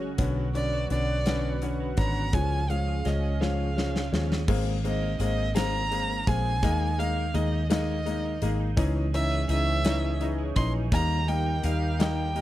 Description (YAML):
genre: six-eight pop ballad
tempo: 56 BPM (dotted quarters)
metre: 6/8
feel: straight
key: Ab major from 4.5 s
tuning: A4 = 443 Hz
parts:
  - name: bright upright piano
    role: accompaniment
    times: 0.0-12.4 s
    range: D3 to Eb4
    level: -31 LUFS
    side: left 4 dB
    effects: none
  - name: sweeping resonant pad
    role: sustained chords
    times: 0.0-4.5, 9.1-12.4 s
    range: C#3 to G5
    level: -38 LUFS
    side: right 3 dB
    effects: chorus
  - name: twelve-string electric guitar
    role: arpeggios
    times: 0.0-12.4 s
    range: Eb3 to Ab4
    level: -41 LUFS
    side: right 14 dB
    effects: analog chorus
  - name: vintage muted fingered electric bass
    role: bass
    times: 0.0-12.4 s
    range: F#1 to D#2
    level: -28 LUFS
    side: equal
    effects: none
  - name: huge arena drum kit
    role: drums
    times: 0.2-12.4 s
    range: crash cymbal, hi-hat, kick drum, snare drum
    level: -30 LUFS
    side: equal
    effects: none
  - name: dark violin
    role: melody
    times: 0.5-12.4 s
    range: D5 to C6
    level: -31 LUFS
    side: right 1 dB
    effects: none
room: little or no reverb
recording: dry, close 1970s-style studio recording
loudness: -24 LUFS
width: side -14 dB against mid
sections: 0.0-4.5 A section; 4.5-12.4 A section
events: drum fill 3.4-4.5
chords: 0.2 Bmadd9; 2.3 C#; 4.5 Abadd9; 6.6 Ebsus4; 8.8 Dbmadd9; 10.9 Eb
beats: | 0.19 1.26 | 2.34 3.41 | 4.48 5.56 | 6.63 7.70 | 8.77 9.85 | 10.92 11.99